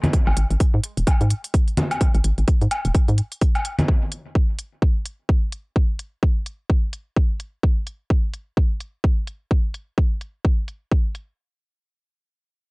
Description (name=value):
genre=minimal techno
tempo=128 BPM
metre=4/4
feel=swing 59% on 16ths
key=unclear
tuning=A4 = 440 Hz
part: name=electronic hi-hat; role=drums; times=0.0-11.3 s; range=none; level=-33 LUFS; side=equal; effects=low-pass filter on hats, low-pass filter on cymbals
part: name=congas and woodblock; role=percussion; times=0.0-3.9 s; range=none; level=-24 LUFS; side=equal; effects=tape echo
part: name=electronic kick drum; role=drums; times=0.1-11.0 s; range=none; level=-18 LUFS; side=equal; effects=none
part: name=hollow knocking FM bass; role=bass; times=0.3-3.2 s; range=D#1 to G#2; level=-19 LUFS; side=equal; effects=sidechain pumping
room=little or no reverb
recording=dry, gritty hardware recording, cassette tape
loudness=-19 LUFS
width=side -30 dB against mid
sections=0.0-11.4 A section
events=none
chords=none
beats=| 0.13 0.60 1.07 1.54 | 2.01 2.48 2.95 3.41 | 3.88 4.35 4.82 5.29 | 5.76 6.23 6.70 7.16 | 7.63 8.10 8.57 9.04 | 9.51 9.98 10.45 10.91